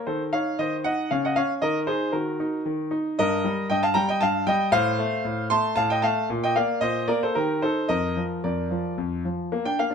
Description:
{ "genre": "classical-period piano sonatina", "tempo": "115 BPM", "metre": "3/4", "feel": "straight", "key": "Bb major from 3.2 s", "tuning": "A4 = 438 Hz", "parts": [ { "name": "clear concert grand piano", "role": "solo", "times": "0.0-9.9 s", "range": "F2 to C6", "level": "-22 LUFS", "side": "equal", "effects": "none" } ], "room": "light reverb", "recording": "none", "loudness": "-22 LUFS", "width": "side -6 dB against mid", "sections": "0.0-9.5 A section", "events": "none", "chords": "0.1 Ebm13; 1.1 Dbadd9; 1.6 Ebm; 3.2 Eb/G; 4.7 F/A; 6.3 Bb; 7.3 Eb; 7.9 Bb/F; 9.0 N.C." }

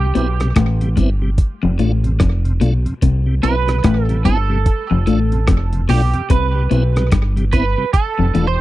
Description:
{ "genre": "roots reggae", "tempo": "73 BPM", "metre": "4/4", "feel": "swing 61% on 16ths", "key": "C major", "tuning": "A4 = 440 Hz", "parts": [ { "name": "clean electric guitar", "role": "accompaniment", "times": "0.0-8.6 s", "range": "G4 to C5", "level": "-22 LUFS", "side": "right 8 dB", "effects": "ensemble chorus, tape echo" }, { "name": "tonewheel organ", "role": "accompaniment", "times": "0.0-8.5 s", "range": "F2 to F4", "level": "-22 LUFS", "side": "equal", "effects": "chorus vibrato" }, { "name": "deep dub fingered electric bass", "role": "bass", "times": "0.0-8.6 s", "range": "E1 to C2", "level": "-17 LUFS", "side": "equal", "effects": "none" }, { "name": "electric guitar at the edge of break-up", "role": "riff", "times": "0.2-8.6 s", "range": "E2 to C3", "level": "-21 LUFS", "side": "left 5 dB", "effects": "spring reverb" }, { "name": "dusty soul sampler-style drum kit", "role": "drums", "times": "0.2-8.6 s", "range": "hi-hat, kick drum, rim click", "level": "-16 LUFS", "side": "equal", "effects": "none" } ], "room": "little or no reverb", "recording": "dry, close 1970s-style studio recording", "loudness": "-14 LUFS", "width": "side -16 dB against mid", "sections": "0.0-8.6 A section", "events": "clean electric guitar solo 0.0-8.6", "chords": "0.0 Cmaj7; 1.4 F6; 3.0 Cmaj7; 4.7 F6; 6.3 Cmaj7; 7.9 F6" }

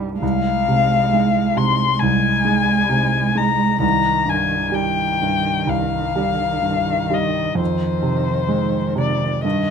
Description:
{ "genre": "classical, slow romantic movement for piano trio", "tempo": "65 BPM", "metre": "4/4", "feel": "rubato", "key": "unclear", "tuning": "A4 = 439 Hz", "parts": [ { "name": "muted cello", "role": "second line", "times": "0.0-9.7 s", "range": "Eb3 to Ab3", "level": "-25 LUFS", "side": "right 7 dB", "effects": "none" }, { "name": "clear concert grand piano", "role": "accompaniment", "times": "0.0-9.7 s", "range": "C2 to Ab3", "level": "-20 LUFS", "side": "right 2 dB", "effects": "none" }, { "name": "muted violin", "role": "melody", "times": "0.2-9.7 s", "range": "C5 to C6", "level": "-20 LUFS", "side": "left 8 dB", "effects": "none" } ], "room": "light reverb", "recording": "close, detailed microphones", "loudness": "-16 LUFS", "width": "side -6 dB against mid", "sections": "0.0-9.7 A section", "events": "none", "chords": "0.2 Fm/C; 3.8 Cm; 7.6 Fm7" }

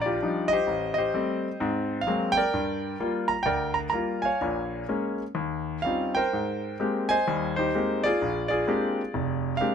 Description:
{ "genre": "solo jazz", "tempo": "128 BPM", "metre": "4/4", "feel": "swing 67% on 8ths, rubato", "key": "unclear", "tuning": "A4 = 440 Hz", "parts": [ { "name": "clear concert grand piano", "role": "solo", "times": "0.0-9.7 s", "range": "F1 to Bb5", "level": "-24 LUFS", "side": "equal", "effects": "none" } ], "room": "little or no reverb", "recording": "close, detailed microphones", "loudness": "-24 LUFS", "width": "side -7 dB against mid", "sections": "0.0-9.7 A section", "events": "none", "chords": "0.0 Ebmaj9; 0.7 Am7b5; 1.6 Ab9; 2.5 Gm7; 4.4 Bbm7; 5.4 Eb13; 6.3 Abmaj9; 8.2 Bb13" }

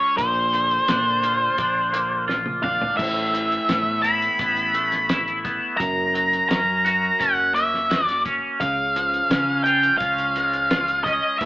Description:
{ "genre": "psychedelic rock", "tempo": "86 BPM", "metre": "4/4", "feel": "straight", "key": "unclear", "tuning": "A4 = 440 Hz", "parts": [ { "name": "octave-fuzz lead guitar", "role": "melody", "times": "0.0-11.5 s", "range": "C5 to B5", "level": "-20 LUFS", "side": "equal", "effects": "distortion" }, { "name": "twangy electric guitar", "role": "riff", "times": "0.0-11.5 s", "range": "F#2 to F#4", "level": "-26 LUFS", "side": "equal", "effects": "rotary speaker" }, { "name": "overdriven fingered electric bass", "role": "bass", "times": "0.2-11.5 s", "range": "F#1 to C#3", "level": "-31 LUFS", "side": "equal", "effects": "none" }, { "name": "cloth-damped thuddy drum kit", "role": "drums", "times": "0.2-11.5 s", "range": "crash cymbal, hi-hat, kick drum, snare drum, toms", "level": "-27 LUFS", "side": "equal", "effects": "none" } ], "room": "moderate studio reverb, RT60 0.9 s", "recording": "band playing live in one room, AM radio sound", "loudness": "-18 LUFS", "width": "side -18 dB against mid", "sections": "0.0-11.5 A section", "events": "drum fill 2.3-3.0", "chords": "0.2 Bb; 3.0 Asus2; 5.8 F#; 8.6 C#" }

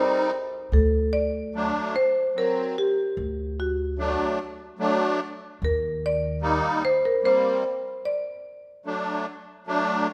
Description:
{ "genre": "klezmer", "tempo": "74 BPM", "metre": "3/4", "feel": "straight", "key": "D phrygian dominant", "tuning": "A4 = 440 Hz", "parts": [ { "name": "marimba with medium hard mallets", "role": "melody", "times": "0.0-10.0 s", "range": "F#4 to D5", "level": "-27 LUFS", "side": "equal", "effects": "none" }, { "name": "musette accordion", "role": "accompaniment", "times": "0.0-10.1 s", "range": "F#3 to Eb4", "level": "-28 LUFS", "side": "equal", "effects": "none" }, { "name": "upright bass", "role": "bass", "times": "0.7-6.6 s", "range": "D2 to Eb2", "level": "-29 LUFS", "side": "equal", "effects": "none" } ], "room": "moderate recital hall reverb, RT60 1.6 s", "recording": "none", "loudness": "-25 LUFS", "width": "mono", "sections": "0.0-10.1 A section", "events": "break 8.0-10.1", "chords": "0.0 Cm; 0.7 D; 5.6 Eb; 8.0 D" }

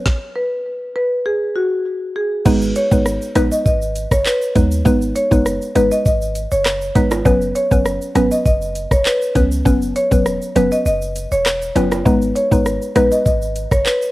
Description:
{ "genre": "dancehall", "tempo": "100 BPM", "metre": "4/4", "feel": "straight", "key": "G# minor", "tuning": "A4 = 440 Hz", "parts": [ { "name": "mallet-like synth pluck", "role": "accompaniment", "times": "0.0-13.2 s", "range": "F#3 to B4", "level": "-17 LUFS", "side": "equal", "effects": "chorus, phaser, cassette tape" }, { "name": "island pop drum kit", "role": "drums", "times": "0.1-14.1 s", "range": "crash cymbal, handclaps, hi-hat, kick drum, rim click, shaker, snare drum", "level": "-18 LUFS", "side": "equal", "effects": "none" }, { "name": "marimba with medium mallets", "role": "melody", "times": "0.4-14.1 s", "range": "F#4 to D#5", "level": "-19 LUFS", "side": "equal", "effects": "cassette tape" }, { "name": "clean 808-style bass", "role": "bass", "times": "2.5-13.8 s", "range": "E1 to D#2", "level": "-22 LUFS", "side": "equal", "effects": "none" }, { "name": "egg shaker and timbales", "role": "percussion", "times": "2.5-14.1 s", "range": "none", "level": "-31 LUFS", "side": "right 3 dB", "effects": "none" } ], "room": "digital ambience", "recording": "home recording on cassette", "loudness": "-14 LUFS", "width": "side -18 dB against mid", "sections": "0.0-2.5 A section; 2.5-14.1 B section", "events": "stop 0.1-2.5; break 10.9-12.1", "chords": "0.0 N.C.; 2.5 G#m; 7.3 F#sus4; 12.1 G#m" }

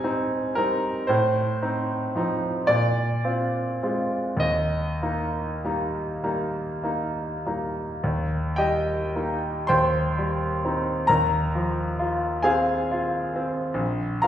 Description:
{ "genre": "classical, romantic nocturne for solo piano", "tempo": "32-46 BPM (dotted quarters)", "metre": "6/8", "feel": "rubato", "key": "Eb major", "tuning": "A4 = 440 Hz", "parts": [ { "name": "bright concert grand piano", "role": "solo", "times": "0.0-14.3 s", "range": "Bb1 to C6", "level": "-22 LUFS", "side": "equal", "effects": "none" } ], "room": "wet recital hall reverb, RT60 1.3 s", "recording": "heard from further back in the room", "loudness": "-22 LUFS", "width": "side -10 dB against mid", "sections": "0.0-8.0 A section; 8.0-14.3 B section", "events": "none", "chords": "0.0 Abmaj7; 1.1 F7/A; 2.7 Bb9; 4.4 Eb; 9.7 Cm/Eb; 11.1 Fm/Eb" }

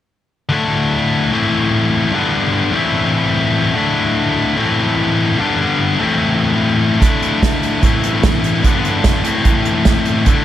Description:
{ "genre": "indie rock", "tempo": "148 BPM", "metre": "4/4", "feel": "straight", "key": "A minor", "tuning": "A4 = 441 Hz", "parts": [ { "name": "scooped high-gain guitar", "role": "riff", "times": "0.5-10.4 s", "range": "G2 to E4", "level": "-14 LUFS", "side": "left 2 dB", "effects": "distortion" }, { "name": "unplugged drum kit", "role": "drums", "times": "7.0-10.4 s", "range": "hi-hat, kick drum, snare drum", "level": "-15 LUFS", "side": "right 2 dB", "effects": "none" } ], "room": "moderate huge ambient reverb, RT60 7.5 s", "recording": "dreamy mix soaked in reverb", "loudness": "-13 LUFS", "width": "side -12 dB against mid", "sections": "0.5-10.4 A section", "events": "none", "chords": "0.5 Dsus2; 1.3 Am; 2.1 G; 2.7 Am; 3.8 Dsus2; 4.6 Am; 5.4 G; 6.0 Am; 7.0 Dsus2; 7.8 Am; 8.6 G; 9.3 Am" }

